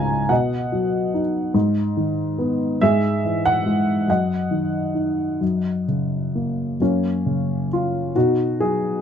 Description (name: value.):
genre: classical, lyrical solo piano.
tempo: 43-48 BPM (dotted quarters).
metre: 6/8.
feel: rubato.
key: unclear.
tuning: A4 = 440 Hz.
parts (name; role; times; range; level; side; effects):
dark upright piano; solo; 0.0-9.0 s; C#2 to A#5; -19 LUFS; left 1 dB; none.
room: moderate studio ambience, RT60 0.5 s.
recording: dark, warm production.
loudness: -19 LUFS.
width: side -8 dB against mid.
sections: 0.0-6.8 A section; 6.8-9.0 B section.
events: none.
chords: 0.3 B; 1.5 G#m; 2.8 E/G#; 4.1 D#m/F#; 5.4 F#; 8.1 B.